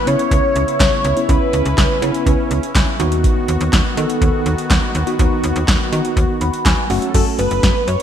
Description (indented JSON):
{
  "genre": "synth-pop",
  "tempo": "123 BPM",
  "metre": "4/4",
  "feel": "straight",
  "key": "unclear",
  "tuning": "A4 = 439 Hz",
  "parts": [
    { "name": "wide unison lead", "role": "melody", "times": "0.0-3.0, 7.1-8.0 s", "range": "A4 to C#5", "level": "-19 LUFS", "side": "equal", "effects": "digital delay" },
    { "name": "warm analog pad", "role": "sustained chords", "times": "0.0-7.1 s", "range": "C#3 to A4", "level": "-25 LUFS", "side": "left 1 dB", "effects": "chorus" },
    { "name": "mellow tine electric piano", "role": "accompaniment", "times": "0.1-7.7 s", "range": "A3 to B5", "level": "-21 LUFS", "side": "right 1 dB", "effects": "medium stereo tremolo" },
    { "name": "slap-like FM bass", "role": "bass", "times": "0.1-8.0 s", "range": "F#1 to D#3", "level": "-19 LUFS", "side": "equal", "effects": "none" },
    { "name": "electro analog drum machine", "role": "drums", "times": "0.1-8.0 s", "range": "crash cymbal, handclaps, hi-hat, kick drum, snare drum", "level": "-17 LUFS", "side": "equal", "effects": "overdrive" }
  ],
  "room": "moderate lush hall reverb, RT60 2.4 s",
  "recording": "bright 1980s-style digital production",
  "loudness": "-14 LUFS",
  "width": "side -9 dB against mid",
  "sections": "0.0-7.1 A section",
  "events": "tine electric piano fill 6.2-7.1",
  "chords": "0.0 C#m7; 3.0 B/D#; 6.9 F#m",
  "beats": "0.32 0.80 | 1.29 1.78 2.27 2.75 | 3.24 3.73 4.22 4.71 | 5.19 5.68 6.17 6.66 | 7.14 7.63"
}